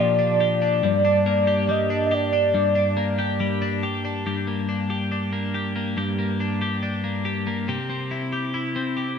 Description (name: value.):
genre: dream pop.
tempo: 70 BPM.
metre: 4/4.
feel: straight.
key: G minor, G dorian from 4.3 s.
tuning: A4 = 440 Hz.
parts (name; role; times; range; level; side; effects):
warm velvety synth lead; melody; 0.0-3.8 s; D5 to Eb5; -21 LUFS; right 1 dB; chorus, ping-pong delay.
twelve-string electric guitar; arpeggios; 0.0-9.2 s; G2 to G4; -23 LUFS; left 1 dB; wide subtle chorus, ping-pong delay.
room: moderate plate reverb, RT60 3.3 s.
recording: none.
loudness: -21 LUFS.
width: side -6 dB against mid.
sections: 0.0-4.3 A section; 4.3-9.2 B section.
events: none.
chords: 0.0 Bb6; 0.8 Gm; 7.7 C.